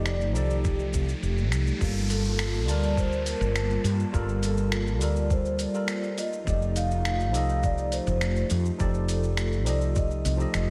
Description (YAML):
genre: sunset chillout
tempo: 103 BPM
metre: 4/4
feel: straight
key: G minor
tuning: A4 = 441 Hz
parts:
  - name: vibraphone with soft mallets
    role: melody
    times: 0.0-10.7 s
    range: G4 to F5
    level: -35 LUFS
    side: equal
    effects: analog delay
  - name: tine electric piano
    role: accompaniment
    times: 0.0-10.7 s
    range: F3 to A5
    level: -35 LUFS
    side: equal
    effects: delay
  - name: airy breathy pad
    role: sustained chords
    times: 0.0-10.7 s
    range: G3 to A5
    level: -37 LUFS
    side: equal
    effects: chorus
  - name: woody fretless electric bass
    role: bass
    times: 0.0-10.7 s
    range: F1 to G2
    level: -29 LUFS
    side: equal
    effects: none
  - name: riser and downlifter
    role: sound effects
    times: 0.0-6.5 s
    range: none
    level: -41 LUFS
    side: equal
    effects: none
  - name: dusty soul sampler-style drum kit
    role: drums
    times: 0.1-10.7 s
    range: finger snaps, hi-hat, shaker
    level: -37 LUFS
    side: equal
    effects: overdrive
  - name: electronic kick drum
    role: drums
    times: 0.6-10.1 s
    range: none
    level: -29 LUFS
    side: equal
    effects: overdrive
room: moderate lush hall reverb, RT60 1.6 s, digital ambience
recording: dreamy mix soaked in reverb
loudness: -26 LUFS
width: mono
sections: 0.0-1.8 A section; 1.8-10.7 B section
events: riser 0.0-1.8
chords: 0.0 F13; 1.8 Gm9; 6.2 F13